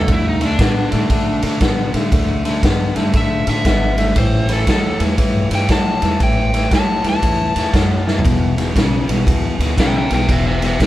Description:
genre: electric blues shuffle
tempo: 118 BPM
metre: 4/4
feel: swing 64% on 8ths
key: unclear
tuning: A4 = 441 Hz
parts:
  - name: overdriven slide guitar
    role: melody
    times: 0.0-10.9 s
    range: D4 to A5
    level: -21 LUFS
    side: equal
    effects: none
  - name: clean electric guitar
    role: riff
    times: 0.0-10.9 s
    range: E2 to B3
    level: -21 LUFS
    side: left 3 dB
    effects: none
  - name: upright bass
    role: bass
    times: 0.0-10.9 s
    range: E1 to C3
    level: -21 LUFS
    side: equal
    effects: none
  - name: raw garage drum kit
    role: drums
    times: 0.0-10.9 s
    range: kick drum, ride cymbal, snare drum, toms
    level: -17 LUFS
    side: equal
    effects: none
room: moderate studio ambience, RT60 0.5 s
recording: band playing live in one room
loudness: -14 LUFS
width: side -15 dB against mid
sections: 0.0-10.9 A section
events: electric slide guitar solo 0.0-10.9; drum fill 8.0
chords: 0.1 D5; 4.2 A5; 8.2 E5

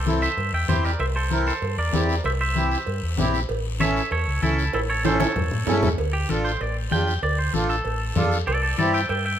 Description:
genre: latin, cumbia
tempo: 193 BPM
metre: 4/4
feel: straight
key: D minor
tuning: A4 = 440 Hz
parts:
  - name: twangy electric guitar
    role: melody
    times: 0.0-9.4 s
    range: E4 to G5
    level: -26 LUFS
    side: right 2 dB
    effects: spring reverb
  - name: fingered electric bass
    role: bass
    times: 0.0-9.3 s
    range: A1 to A2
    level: -25 LUFS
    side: equal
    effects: none
  - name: accordion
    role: accompaniment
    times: 0.1-9.0 s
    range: C4 to Bb4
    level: -25 LUFS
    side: equal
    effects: none
  - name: congas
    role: percussion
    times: 0.1-9.3 s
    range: none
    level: -28 LUFS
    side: left 3 dB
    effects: none
  - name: guiro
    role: percussion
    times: 0.1-9.4 s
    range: none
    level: -36 LUFS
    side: left 6 dB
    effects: none
  - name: cowbell and timbales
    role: percussion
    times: 0.4-9.2 s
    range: none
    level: -31 LUFS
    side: right 4 dB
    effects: none
room: light reverb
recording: minimal, uncompressed stereo recording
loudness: -20 LUFS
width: side -10 dB against mid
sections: 0.0-6.0 A section; 6.0-9.4 B section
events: drum fill 4.7-6.0; clean electric guitar solo 6.0-9.4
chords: 0.0 C; 3.5 A; 6.0 Dm; 8.5 C

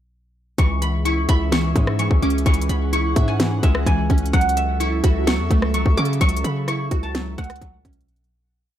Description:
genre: hip hop, trap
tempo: 128 BPM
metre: 4/4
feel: half-time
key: C# minor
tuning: A4 = 440 Hz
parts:
  - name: guzheng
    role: melody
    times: 0.6-8.8 s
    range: E5 to D6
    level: -26 LUFS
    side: equal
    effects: tape echo
  - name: glassy wavetable pluck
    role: accompaniment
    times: 0.6-8.1 s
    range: E3 to E5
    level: -26 LUFS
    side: right 3 dB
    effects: chorus
  - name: airy breathy pad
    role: sustained chords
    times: 0.6-8.0 s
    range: E3 to F#5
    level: -30 LUFS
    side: left 1 dB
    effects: chorus
  - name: hard-hitting 808-style bass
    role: bass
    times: 0.6-8.1 s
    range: C#2 to C#3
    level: -22 LUFS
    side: equal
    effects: none
  - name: trap drum kit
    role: drums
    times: 0.6-8.3 s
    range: hi-hat, kick drum, rim click, snare drum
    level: -20 LUFS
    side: equal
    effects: none
room: little or no reverb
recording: faint mains hum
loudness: -17 LUFS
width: side -11 dB against mid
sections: 0.6-8.1 hook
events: fade-out 6.2-8.1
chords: 0.6 C#m; 4.3 F#m7/C#

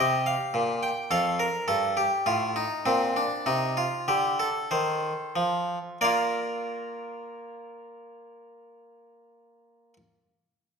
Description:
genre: classical, baroque-style 3-part fugue for harpsichord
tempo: 44-54 BPM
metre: 4/4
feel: straight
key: Bb major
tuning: A4 = 441 Hz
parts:
  - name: harpsichord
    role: solo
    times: 0.0-10.0 s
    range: F2 to G5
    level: -25 LUFS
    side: equal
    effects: none
room: wet recital hall reverb, RT60 1.4 s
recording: minimal, uncompressed stereo recording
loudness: -24 LUFS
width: side -5 dB against mid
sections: 0.0-6.0 A section; 6.0-10.8 B section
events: slowing down 0.0-6.0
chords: 0.0 Cm7; 1.1 F7; 6.0 Bb

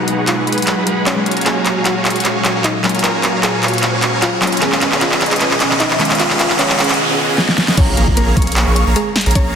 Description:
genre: future bass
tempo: 152 BPM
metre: 4/4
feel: swing 53% on 16ths, half-time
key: F# major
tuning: A4 = 440 Hz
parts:
  - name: mallet-like synth pluck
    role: melody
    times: 0.0-9.6 s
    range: G#3 to A#5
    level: -24 LUFS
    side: right 1 dB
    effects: chorus, sidechain pumping, dub echo
  - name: glassy digital keys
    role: accompaniment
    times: 0.0-7.8 s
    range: D#3 to F#4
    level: -22 LUFS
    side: left 2 dB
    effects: chorus, sidechain pumping
  - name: ethereal airy pad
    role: sustained chords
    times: 0.0-7.0 s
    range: A#2 to G#4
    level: -24 LUFS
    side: left 1 dB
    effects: ensemble chorus, built-in reverb, sidechain pumping
  - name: supersaw chords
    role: riff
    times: 0.0-9.6 s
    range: G#3 to C#6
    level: -19 LUFS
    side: right 2 dB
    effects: lush chorus, sidechain pumping, low-pass filter
  - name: riser, noise sweep and impact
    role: sound effects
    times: 0.5-9.4 s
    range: none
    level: -24 LUFS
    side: equal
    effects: none
  - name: dubstep drum kit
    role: drums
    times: 0.1-9.4 s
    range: crash cymbal, handclaps, hi-hat, snare drum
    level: -16 LUFS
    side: equal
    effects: overdrive
  - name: airy dreamy lead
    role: arpeggios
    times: 7.8-9.6 s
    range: A#5 to C#6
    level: -25 LUFS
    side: equal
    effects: chorus, sidechain pumping
  - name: saturated sub bass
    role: bass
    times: 7.8-9.6 s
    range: A#1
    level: -16 LUFS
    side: equal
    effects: sidechain pumping
  - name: electronic kick drum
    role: drums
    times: 7.8-9.4 s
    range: none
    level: -15 LUFS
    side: equal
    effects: overdrive
room: wet lush hall reverb, RT60 2.0 s, digital ambience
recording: dense, heavily limited modern master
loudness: -12 LUFS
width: side -7 dB against mid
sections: 0.0-7.8 A section; 7.8-9.6 B section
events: build-up 0.0-7.8; drum fill 0.0-7.0, 7.4-7.8; filter sweep on ambient pad 0.0-7.8; riser 0.5-7.0; noise sweep 6.2-7.8; drop 7.8-9.6; impact 7.8-9.4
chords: 0.0 G#m7; 1.3 F#maj9; 4.6 C#7; 7.8 A#m7

